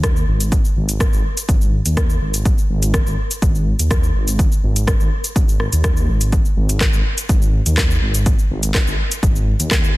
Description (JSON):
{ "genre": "afro house", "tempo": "124 BPM", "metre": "4/4", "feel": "straight", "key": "unclear", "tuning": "A4 = 439 Hz", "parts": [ { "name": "dark detuned saw bass", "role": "bass", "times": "0.0-9.9 s", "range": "G#1 to D#2", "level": "-19 LUFS", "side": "equal", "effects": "sidechain pumping" }, { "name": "electronic kick drum", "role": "drums", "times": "0.0-9.8 s", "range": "none", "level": "-17 LUFS", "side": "equal", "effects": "overdrive" }, { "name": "house drum kit", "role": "drums", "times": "0.0-9.9 s", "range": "handclaps, hi-hat, rim click, shaker", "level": "-23 LUFS", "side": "left 1 dB", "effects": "overdrive" } ], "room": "little or no reverb", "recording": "dense, heavily limited modern master", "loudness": "-14 LUFS", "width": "side -19 dB against mid", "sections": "0.0-10.0 A section", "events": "none", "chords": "none" }